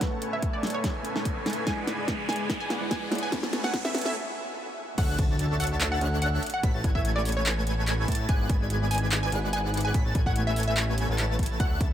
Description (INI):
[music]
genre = future bass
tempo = 145 BPM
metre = 4/4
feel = swing 53% on 16ths, half-time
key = A major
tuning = A4 = 441 Hz
[part]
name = wide unison pluck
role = melody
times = 0.0-11.8 s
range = C#5 to G#5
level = -34 LUFS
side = right 1 dB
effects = sidechain pumping, dub echo
[part]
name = soft round pluck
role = accompaniment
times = 0.0-4.2 s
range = G#3 to G#5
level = -40 LUFS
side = right 2 dB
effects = none
[part]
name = shimmering ambient pad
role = sustained chords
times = 0.0-11.9 s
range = G#2 to G#5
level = -40 LUFS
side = equal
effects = chorus, built-in reverb, sidechain pumping
[part]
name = dense compressed supersaw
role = riff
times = 0.0-11.9 s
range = G#3 to B5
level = -33 LUFS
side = equal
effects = sidechain pumping, low-pass filter, digital delay
[part]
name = electronic kick drum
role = drums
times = 0.0-11.9 s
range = none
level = -27 LUFS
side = equal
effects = overdrive
[part]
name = pop drum kit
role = drums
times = 0.0-11.9 s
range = crash cymbal, handclaps, hi-hat, snare drum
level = -31 LUFS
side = equal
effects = overdrive
[part]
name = riser and impact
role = sound effects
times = 0.0-6.6 s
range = none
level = -37 LUFS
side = equal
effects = none
[part]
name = airy dreamy lead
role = arpeggios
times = 5.0-11.9 s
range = F#6 to B6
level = -37 LUFS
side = equal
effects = chorus, sidechain pumping, digital delay
[part]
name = fat analog bass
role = bass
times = 5.0-11.9 s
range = G#1 to A2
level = -28 LUFS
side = equal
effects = sidechain pumping
[sound]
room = light reverb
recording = high-pass filter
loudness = -25 LUFS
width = side -11 dB against mid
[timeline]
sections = 0.0-5.0 A section; 5.0-11.9 B section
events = build-up 0.0-5.0; drum fill 0.0-4.2; riser 0.0-4.2; filter sweep on supersaw synth 0.0-5.0; filter sweep 0.0-5.0; break 4.2-5.0; drop 5.0-11.9; impact 5.0-6.6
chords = 0.0 Amaj9; 1.7 E7/G#; 3.3 Amaj9; 5.0 Dmaj7; 6.4 Amaj9; 8.3 E7/G#; 9.9 Amaj9